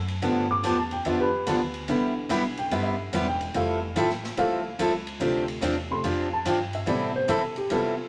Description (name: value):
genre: country, western swing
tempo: 144 BPM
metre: 4/4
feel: swing 66% on 8ths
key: unclear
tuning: A4 = 442 Hz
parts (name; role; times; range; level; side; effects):
- upright bass; bass; 0.0-8.1 s; E1 to C3; -38 LUFS; equal; none
- swinging big-band drum kit; drums; 0.1-7.8 s; hi-hat, ride cymbal, snare drum; -40 LUFS; equal; none
- dark upright piano; accompaniment; 0.2-8.1 s; C3 to D6; -30 LUFS; equal; none
- picked steel-string acoustic guitar; accompaniment; 0.2-7.9 s; C3 to A4; -29 LUFS; equal; none
room: moderate studio reverb, RT60 0.9 s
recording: none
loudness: -26 LUFS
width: mono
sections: 0.0-8.1 A section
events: upright piano solo 0.0-8.1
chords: 0.2 G7; 1.9 Cmaj7; 3.5 Fmaj7; 5.2 G7sus4; 6.9 Am7